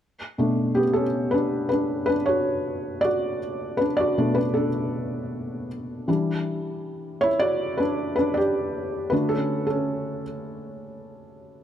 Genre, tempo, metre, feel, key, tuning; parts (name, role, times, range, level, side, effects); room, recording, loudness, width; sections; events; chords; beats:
pop; 79 BPM; 4/4; straight; B minor; A4 = 440 Hz
felt-muted upright piano; accompaniment; 0.4-11.6 s; B2 to D5; -23 LUFS; equal
moderate plate reverb, RT60 3.4 s; -22 LUFS; side -10 dB against mid
0.0-11.6 A section
felt piano solo 0.0-11.6
0.0 Bm7; 6.1 Em7; 9.1 D
| 0.01 0.77 1.52 2.28 | 3.04 3.80 4.56 5.32 | 6.08 6.84 7.60 8.36 | 9.12 9.88 10.64 11.40